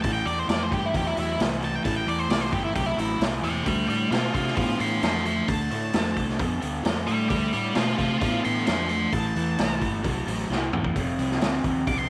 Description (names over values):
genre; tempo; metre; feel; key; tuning
blues rock power trio and southern rock; 132 BPM; 4/4; straight; A minor; A4 = 440 Hz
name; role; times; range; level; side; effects
octave-fuzz lead guitar; melody; 0.0-12.1 s; E4 to D6; -30 LUFS; equal; distortion
crunchy overdriven guitar; riff; 0.0-12.1 s; F2 to B3; -30 LUFS; equal; none
fuzz fingered electric bass; bass; 0.0-12.1 s; F1 to C3; -33 LUFS; equal; overdrive
raw garage drum kit; drums; 0.0-12.0 s; hi-hat, kick drum, snare drum, toms; -31 LUFS; equal; none
room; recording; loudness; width
moderate spring reverb, RT60 1.4 s, small room ambience; faint mains hum; -25 LUFS; mono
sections
0.0-12.1 A section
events
drum fill 10.5-11.0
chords
0.0 Am; 3.7 Dm; 9.1 Am; 11.0 F7(no3)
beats
| 0.03 0.48 0.94 1.39 | 1.85 2.30 2.76 3.21 | 3.66 4.12 4.57 5.03 | 5.48 5.94 6.39 6.85 | 7.30 7.76 8.22 8.67 | 9.13 9.58 10.04 10.49 | 10.95 11.41 11.86